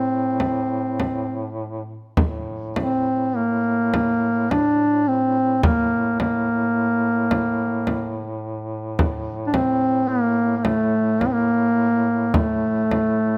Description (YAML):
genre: caucasian folk, Caucasian lament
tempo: 53 BPM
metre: 3/4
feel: uneven beats, rubato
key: A phrygian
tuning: A4 = 439 Hz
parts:
  - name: mellow duduk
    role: melody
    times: 0.0-13.4 s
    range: A3 to D4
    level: -22 LUFS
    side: equal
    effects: none
  - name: warm duduk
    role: drone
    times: 0.0-13.4 s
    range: A2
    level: -32 LUFS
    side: equal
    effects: none
  - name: frame drum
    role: percussion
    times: 0.4-13.2 s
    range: none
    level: -25 LUFS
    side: equal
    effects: none
room: light reverb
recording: close, detailed microphones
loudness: -21 LUFS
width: mono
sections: 0.0-13.4 A section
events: none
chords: none